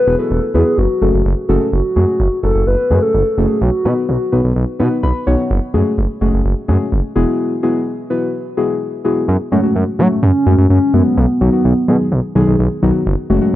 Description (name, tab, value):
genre	synth-pop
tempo	127 BPM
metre	4/4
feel	straight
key	F# dorian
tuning	A4 = 443 Hz
part	hollow clarinet-like synth lead	melody	0.0-4.5, 10.0-12.1 s	A3 to B4	-16 LUFS	equal	chorus, analog delay
part	muted felt-like synth keys	accompaniment	0.1-13.6 s	D#3 to B5	-17 LUFS	left 1 dB	chorus
part	smooth gliding synth bass	bass	0.1-13.6 s	E1 to F#3	-14 LUFS	right 1 dB	none
room	little or no reverb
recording	none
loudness	-12 LUFS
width	side -14 dB against mid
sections	0.0-1.7 A section; 1.7-9.3 B section; 9.3-13.6 A section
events	synth keys fill 4.8-5.5; break 7.4-9.3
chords	0.0 Eadd9; 0.8 F#madd9; 3.6 B; 5.5 F#madd9; 7.2 Eadd9; 9.3 F#madd9; 11.2 B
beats	0.31 0.78 1.25 | 1.72 2.20 2.67 3.14 | 3.61 4.09 4.56 5.03 | 5.50 5.98 6.45 6.92 | 7.39 7.87 8.34 8.81 | 9.28 9.76 10.23 10.70 | 11.17 11.65 12.12 12.59 | 13.06 13.54